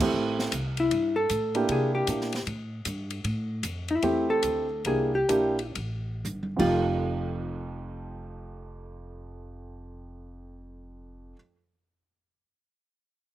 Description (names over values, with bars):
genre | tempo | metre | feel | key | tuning
jazz, small-group swing and bop | 108-155 BPM | 4/4 | swing 64% on 8ths | F mixolydian | A4 = 442 Hz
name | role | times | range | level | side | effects
warm grand piano | accompaniment | 0.0-11.4 s | F2 to G4 | -29 LUFS | right 3 dB | none
upright bass | bass | 0.0-11.3 s | F1 to C3 | -34 LUFS | equal | none
open jazz drum kit | drums | 0.0-6.7 s | crash cymbal, hi-hat, kick drum, ride cymbal, snare drum, toms | -35 LUFS | equal | none
vintage hollow-body jazz guitar | melody | 0.8-11.3 s | E4 to A4 | -27 LUFS | left 2 dB | none
room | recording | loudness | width
little or no reverb | recorded outdoors, with no room sound | -25 LUFS | side -13 dB against mid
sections
0.1-6.8 A section; 6.8-11.2 B section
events
slowing down 3.2-6.8; drum fill 6.3-6.8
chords
0.1 Am7; 1.7 C9; 3.2 Am7; 4.9 C9; 6.5 F7